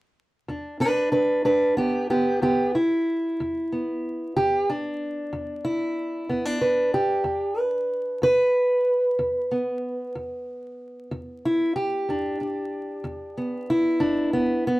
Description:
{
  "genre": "acoustic country blues, solo or duo",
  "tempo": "62 BPM (dotted quarters)",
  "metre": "12/8",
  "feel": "straight",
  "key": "unclear",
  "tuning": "A4 = 441 Hz",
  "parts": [
    { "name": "fingerpicked steel-string acoustic guitar", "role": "solo", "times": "0.5-14.8 s", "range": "E2 to B4", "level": "-22 LUFS", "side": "equal", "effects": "none" }
  ],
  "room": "moderate studio ambience, RT60 0.5 s",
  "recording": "band playing live in one room, vinyl crackle",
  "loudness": "-22 LUFS",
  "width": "side -18 dB against mid",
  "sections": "0.5-14.8 A section",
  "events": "none",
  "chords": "0.5 E7(no3)",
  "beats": "| 0.50 1.47 2.43 3.40 | 4.36 5.33 6.29 7.26 | 8.22 9.19 10.15 11.12 | 12.08 13.05 14.01"
}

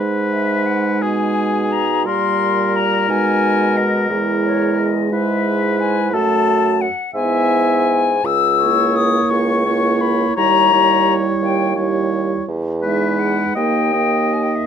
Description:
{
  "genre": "classical, slow romantic movement for wind quintet",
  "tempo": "58 BPM (dotted quarters)",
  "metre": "6/8",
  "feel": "uneven beats, rubato",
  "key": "G# minor",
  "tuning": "A4 = 440 Hz",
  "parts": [
    { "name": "warm oboe", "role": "second line", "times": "0.0-14.7 s", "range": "G#4 to E5", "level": "-21 LUFS", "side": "left 2 dB", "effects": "none" },
    { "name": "dark clarinet", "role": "accompaniment", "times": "0.0-14.7 s", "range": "D#4 to G4", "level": "-23 LUFS", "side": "right 12 dB", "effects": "none" },
    { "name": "mellow French horn", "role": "accompaniment", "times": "0.0-14.7 s", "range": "G3 to B3", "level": "-23 LUFS", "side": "right 1 dB", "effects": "none" },
    { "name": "mellow bassoon", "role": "bass", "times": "0.0-14.6 s", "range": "C#2 to B2", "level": "-21 LUFS", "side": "right 2 dB", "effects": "none" },
    { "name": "bright silver concert flute", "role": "melody", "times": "0.3-14.7 s", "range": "C#5 to E6", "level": "-19 LUFS", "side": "left 8 dB", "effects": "none" }
  ],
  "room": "light reverb",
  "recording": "close, detailed microphones",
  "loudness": "-14 LUFS",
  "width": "side -8 dB against mid",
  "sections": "0.0-14.7 A section",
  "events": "none",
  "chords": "0.0 G#m; 2.1 Gmadd11/Bb; 3.1 G#m/B; 4.1 E; 6.1 F#m; 7.2 E/G#; 8.3 A#dim/C#; 10.4 D#7b9; 12.5 Emaj7; 13.6 D#",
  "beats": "1.03 | 2.06 3.10 | 4.11 5.12 | 6.14 7.16 | 8.25 9.32 | 10.37 11.42 | 12.47 13.55"
}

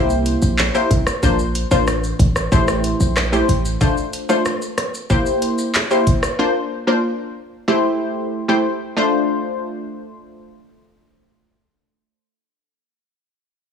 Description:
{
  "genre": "dancehall",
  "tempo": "93 BPM",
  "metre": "4/4",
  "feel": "straight",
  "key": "F major",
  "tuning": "A4 = 440 Hz",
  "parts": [
    { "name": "analog pluck", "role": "accompaniment", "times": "0.0-13.0 s", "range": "A3 to C5", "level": "-18 LUFS", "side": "left 1 dB", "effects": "chorus" },
    { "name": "hard-hitting 808-style bass", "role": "bass", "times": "0.0-3.8 s", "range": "A1 to C2", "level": "-20 LUFS", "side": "equal", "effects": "none" },
    { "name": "island pop drum kit", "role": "drums", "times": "0.1-6.4 s", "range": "handclaps, hi-hat, kick drum, rim click, shaker", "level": "-20 LUFS", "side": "equal", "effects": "none" }
  ],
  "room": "light reverb",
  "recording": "heavily compressed radio sound, multiband compression, small room ambience",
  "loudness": "-16 LUFS",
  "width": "side -7 dB against mid",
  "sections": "0.0-9.0 A section; 9.0-11.6 B section",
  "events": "none",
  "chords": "0.0 C7; 1.2 Bbadd9; 2.5 Am7; 3.8 F6; 5.1 C7; 6.4 Bbadd9; 7.7 Am7; 9.0 F6",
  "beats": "0.58 | 1.23 1.87 2.52 3.17 | 3.81 4.46 5.10 5.75 | 6.39 7.04 7.68 8.33 | 8.97 9.62 10.26 10.91"
}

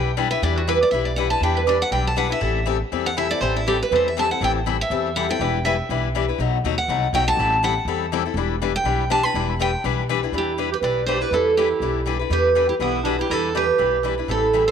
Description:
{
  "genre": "acoustic string swing (jazz manouche)",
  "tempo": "243 BPM",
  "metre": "4/4",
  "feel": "swing 55% on 8ths",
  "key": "E minor",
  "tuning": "A4 = 438 Hz",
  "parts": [
    { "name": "picked steel-string acoustic guitar", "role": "melody", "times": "0.0-14.7 s", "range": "E4 to B5", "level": "-21 LUFS", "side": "right 3 dB", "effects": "tape echo" },
    { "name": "picked steel-string acoustic guitar", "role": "accompaniment", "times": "0.0-14.6 s", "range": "B2 to B4", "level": "-24 LUFS", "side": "left 12 dB", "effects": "none" },
    { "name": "upright bass", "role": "bass", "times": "0.0-14.7 s", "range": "E1 to E2", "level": "-26 LUFS", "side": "right 1 dB", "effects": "none" },
    { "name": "mellow clarinet", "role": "second line", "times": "10.3-14.7 s", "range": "B3 to B4", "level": "-26 LUFS", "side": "right 11 dB", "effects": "none" }
  ],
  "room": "light reverb, small room ambience",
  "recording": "1960s-style stereo with parts hard left and right",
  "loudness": "-18 LUFS",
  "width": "side -7 dB against mid",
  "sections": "0.0-10.3 A section; 10.3-14.7 B section",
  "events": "steel-string acoustic guitar solo 0.0-10.3",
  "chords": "0.0 Em7; 2.4 Am7; 5.4 Em7; 6.4 B7b9; 7.4 Am7; 8.4 Em7",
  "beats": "0.18 | 0.42 0.67 0.92 1.17 | 1.42 1.67 1.92 2.17 | 2.42 2.67 2.92 3.16 | 3.41 3.66 3.91 4.16 | 4.41 4.65 4.90 5.15 | 5.40 5.64 5.89 6.14 | 6.39 6.63 6.88 7.13 | 7.38 7.62 7.87 8.12 | 8.37 8.61 8.86 9.11 | 9.35 9.60 9.85 10.09 | 10.34 10.59 10.83 11.08 | 11.33 11.57 11.82 12.07 | 12.31 12.56 12.81 13.05 | 13.30 13.55 13.79 14.04 | 14.29 14.54"
}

